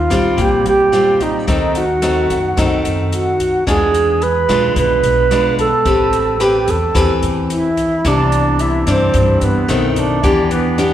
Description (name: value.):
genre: bossa nova.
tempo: 110 BPM.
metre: 4/4.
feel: straight.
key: unclear.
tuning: A4 = 440 Hz.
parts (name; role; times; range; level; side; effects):
bright reedy wooden-headed alto flute; melody; 0.0-10.9 s; B3 to B4; -16 LUFS; right 3 dB; none.
mellow silver concert flute; second line; 0.0-10.9 s; B4 to B5; -25 LUFS; left 3 dB; none.
nylon-string guitar; accompaniment; 0.0-10.9 s; G2 to B4; -17 LUFS; left 2 dB; none.
upright bass; bass; 0.0-10.9 s; A1 to G2; -20 LUFS; equal; none.
open jazz drum kit; drums; 0.1-10.9 s; hi-hat, kick drum, rim click; -24 LUFS; equal; none.
room: wet concert hall reverb, RT60 2.1 s.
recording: recorded in a church or concert hall.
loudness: -12 LUFS.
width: side -11 dB against mid.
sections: 0.0-10.9 A section.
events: none.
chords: 0.0 Eb69; 1.5 D#dim7; 3.7 E7b9; 5.9 Am9; 8.0 Cmaj9; 9.7 B7b9; 10.2 Em7.